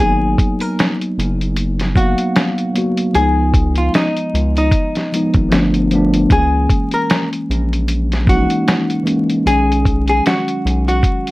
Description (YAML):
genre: lo-fi hip hop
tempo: 76 BPM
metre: 4/4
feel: swing 57% on 16ths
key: unclear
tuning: A4 = 440 Hz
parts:
  - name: archtop guitar, miked and amplified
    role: melody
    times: 0.0-11.3 s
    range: Eb4 to Bb4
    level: -19 LUFS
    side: left 1 dB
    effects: none
  - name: mellow tine electric piano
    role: accompaniment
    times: 0.0-11.3 s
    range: D#3 to F5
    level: -18 LUFS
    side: equal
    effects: medium stereo tremolo, cassette tape
  - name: round analog bass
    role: bass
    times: 0.0-11.0 s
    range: Gb1 to Db2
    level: -17 LUFS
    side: equal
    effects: none
  - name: lo-fi sampler-style drum kit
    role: drums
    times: 0.4-11.3 s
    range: hi-hat, kick drum, snare drum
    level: -17 LUFS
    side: equal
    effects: none
room: moderate small room reverb, RT60 0.5 s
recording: vinyl crackle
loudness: -13 LUFS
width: side -20 dB against mid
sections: 0.0-11.3 A section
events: none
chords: 0.0 Abm9 (rootless); 3.1 Db9; 5.5 G9; 6.3 Gb7; 9.5 B69